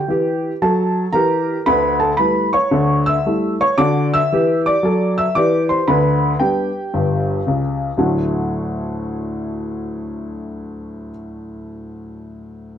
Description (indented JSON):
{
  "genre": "jazz, stride piano",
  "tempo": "114 BPM",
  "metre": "4/4",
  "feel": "swing 66% on 8ths",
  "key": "D major",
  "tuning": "A4 = 438 Hz",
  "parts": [
    { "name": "warm upright piano", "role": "solo", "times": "0.0-12.8 s", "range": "G1 to E6", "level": "-16 LUFS", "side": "equal", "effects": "none" }
  ],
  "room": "moderate studio reverb, RT60 0.8 s",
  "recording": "none",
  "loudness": "-15 LUFS",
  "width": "side -9 dB against mid",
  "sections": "0.0-8.0 A section; 8.0-12.2 B section",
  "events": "none",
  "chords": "0.0 Gm; 1.7 A7/D; 3.8 D7; 5.9 G/D; 8.0 D",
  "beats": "0.08 0.61 1.14 | 1.66 2.19 2.72 3.24 | 3.77 4.30 4.82 5.35 | 5.88 6.41 6.93 7.46 | 7.99 8.52 9.04 9.57 | 10.10 10.63 11.16 11.68"
}